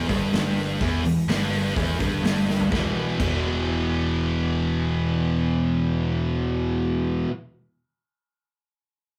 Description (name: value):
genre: hard rock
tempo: 126 BPM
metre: 4/4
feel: straight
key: E minor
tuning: A4 = 440 Hz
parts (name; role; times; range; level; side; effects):
- distorted electric guitar; riff; 0.0-7.3 s; E2 to E3; -30 LUFS; equal; overdrive
- high-gain distorted guitar; riff; 0.0-7.3 s; E2 to E3; -35 LUFS; equal; distortion
- sludgy distorted guitar; riff; 0.0-7.3 s; E2 to E3; -28 LUFS; equal; overdrive
- picked electric bass; bass; 0.0-7.2 s; E1 to G1; -31 LUFS; equal; none
- huge arena drum kit; drums; 0.1-3.3 s; crash cymbal, hi-hat, kick drum, snare drum, toms; -29 LUFS; equal; none
room: light reverb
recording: rough rehearsal-room recording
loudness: -24 LUFS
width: mono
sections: 0.0-2.7 A section; 2.7-6.5 B section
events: drum fill 2.5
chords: 0.0 Em; 2.7 E5